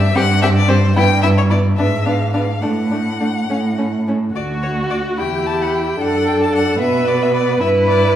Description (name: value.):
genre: quick classical-period movement for string quartet.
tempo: 68-75 BPM (dotted quarters).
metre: 6/8.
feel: rubato.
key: D major.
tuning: A4 = 441 Hz.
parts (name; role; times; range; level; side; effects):
rich violin; melody; 0.0-8.1 s; C5 to A5; -22 LUFS; left 6 dB; none.
warm cello; bass; 0.0-8.2 s; D2 to B2; -18 LUFS; right 1 dB; none.
rich viola; accompaniment; 0.1-8.2 s; A3 to B4; -19 LUFS; right 2 dB; none.
dark violin; second line; 0.2-8.2 s; B3 to G4; -22 LUFS; left 2 dB; none.
room: wet recital hall reverb, RT60 1.5 s.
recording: heard from further back in the room.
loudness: -14 LUFS.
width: side -11 dB against mid.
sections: 0.0-4.4 A section; 4.4-8.2 B section.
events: none.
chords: 0.0 C5/G; 1.0 Em/G; 1.8 G#dim; 2.6 D/A; 4.4 D; 5.2 Em; 6.0 D/F#; 6.8 Bmadd11; 7.6 Em/G.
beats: 0.15 | 0.96 1.78 | 2.62 3.49 | 4.36 5.19 | 6.00 6.81 | 7.61.